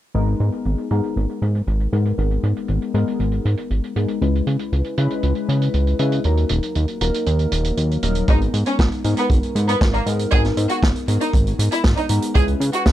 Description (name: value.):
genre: italo disco.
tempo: 118 BPM.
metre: 4/4.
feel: straight.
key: G# minor.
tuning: A4 = 440 Hz.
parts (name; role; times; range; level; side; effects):
chorused polysynth; stabs; 0.1-12.9 s; F#3 to B4; -24 LUFS; left 2 dB; none.
fat analog bass; bass; 0.1-12.9 s; D#1 to C#3; -20 LUFS; equal; none.
vintage drum kit; drums; 0.1-12.9 s; hi-hat, snare drum; -27 LUFS; right 2 dB; low-pass filter on hats, low-pass filter on snare, low-pass filter on room.
rich studio violin section; melody; 8.3-12.8 s; A#3 to G#4; -23 LUFS; equal; tape echo.
kick drum; drums; 8.3-12.9 s; none; -18 LUFS; equal; none.
room: little or no reverb.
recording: dry, close 1970s-style studio recording.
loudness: -17 LUFS.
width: side -13 dB against mid.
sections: 0.1-12.9 A section.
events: filter sweep on drum 0.1-12.9; filter sweep on analog synth bass 0.1-12.9.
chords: 0.1 G#madd9; 4.2 C#m7; 6.2 D#m; 8.3 G#madd9; 12.3 C#m7.